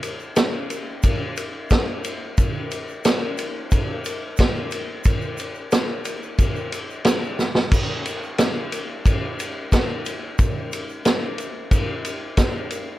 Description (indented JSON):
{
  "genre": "rock",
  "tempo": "90 BPM",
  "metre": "4/4",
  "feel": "straight",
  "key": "none",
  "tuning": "none",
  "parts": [
    { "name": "vintage drum kit", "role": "drums", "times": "0.0-12.9 s", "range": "crash cymbal, kick drum, ride cymbal, snare drum", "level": "-20 LUFS", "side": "equal", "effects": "none" },
    { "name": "egg shaker", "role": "percussion", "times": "0.0-12.9 s", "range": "none", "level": "-40 LUFS", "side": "right 6 dB", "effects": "none" }
  ],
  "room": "little or no reverb",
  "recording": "dark, warm production",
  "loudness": "-20 LUFS",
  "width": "side -16 dB against mid",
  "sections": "0.0-13.0 A section",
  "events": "drum fill 7.4-7.7",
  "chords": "none"
}